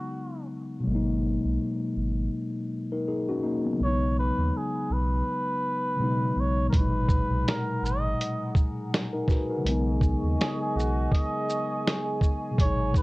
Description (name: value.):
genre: lo-fi hip hop.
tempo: 82 BPM.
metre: 4/4.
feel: swing 58% on 16ths.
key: unclear.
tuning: A4 = 443 Hz.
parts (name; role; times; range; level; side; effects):
trumpet with cup mute; melody; 0.0-13.0 s; F#4 to D#5; -31 LUFS; right 1 dB; low-pass filter, plate reverb.
mellow tine electric piano; accompaniment; 0.0-13.0 s; A#2 to B4; -29 LUFS; left 2 dB; cassette tape, low-pass filter.
sub bass with octave; bass; 0.9-13.0 s; G#1 to B2; -28 LUFS; equal; none.
dark analog pad; sustained chords; 6.7-13.0 s; G#4 to C#6; -35 LUFS; right 2 dB; chorus, low-pass filter, plate reverb.
lo-fi sampler-style drum kit; drums; 6.7-13.0 s; hi-hat, kick drum, shaker, snare drum; -24 LUFS; equal; vintage 12-bit sampler grit.
room: moderate studio reverb, RT60 0.5 s.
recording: worn, warbling old tape, cassette tape, warbly pitch drift.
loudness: -24 LUFS.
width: side -21 dB against mid.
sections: 0.0-13.0 A section.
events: none.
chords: 0.0 B69; 0.9 G#m9; 3.8 B69; 6.7 G#m9; 9.7 B69.